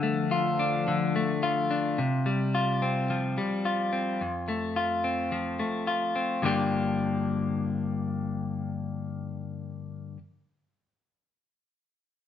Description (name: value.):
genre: rock.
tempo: 108 BPM.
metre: 4/4.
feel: straight.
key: G minor.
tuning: A4 = 440 Hz.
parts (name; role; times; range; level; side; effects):
dark analog pad; sustained chords; 0.0-2.0 s; F3 to F5; -32 LUFS; left 4 dB; chorus.
clean electric guitar; arpeggios; 0.0-10.2 s; F2 to G4; -26 LUFS; left 2 dB; none.
room: wet studio reverb, RT60 0.8 s.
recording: band playing live in one room, nothing above 8.0 kHz.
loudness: -26 LUFS.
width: side -10 dB against mid.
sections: 0.0-6.4 A section; 6.4-8.7 B section.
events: none.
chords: 0.0 Dm; 2.0 Csus4; 4.2 F; 6.4 Gm7.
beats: 0.31 0.87 1.43 | 1.98 2.54 3.10 3.65 | 4.21 4.77 5.33 5.88 | 6.44 7.00 7.56 8.12.